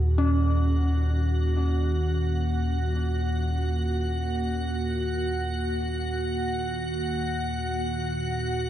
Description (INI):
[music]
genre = dark ambient drone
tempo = free time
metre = none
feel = none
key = Eb minor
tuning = A4 = 441 Hz
[part]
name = deep rumbling drone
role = drone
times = 0.0-8.7 s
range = Eb2 to Bb2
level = -25 LUFS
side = equal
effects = built-in reverb
[part]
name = icy glass pad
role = texture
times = 0.6-8.7 s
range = Gb4 to Gb5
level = -31 LUFS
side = right 2 dB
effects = chorus, built-in reverb
[part]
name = dark detuned synth bell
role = arpeggios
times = 0.2-8.7 s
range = Db4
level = -33 LUFS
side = equal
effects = chorus, phaser, tape echo
[sound]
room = wet huge ambient reverb, RT60 7.1 s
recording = dark, warm production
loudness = -24 LUFS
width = side -11 dB against mid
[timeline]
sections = 0.0-8.7 A section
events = none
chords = 0.0 Ebm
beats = free time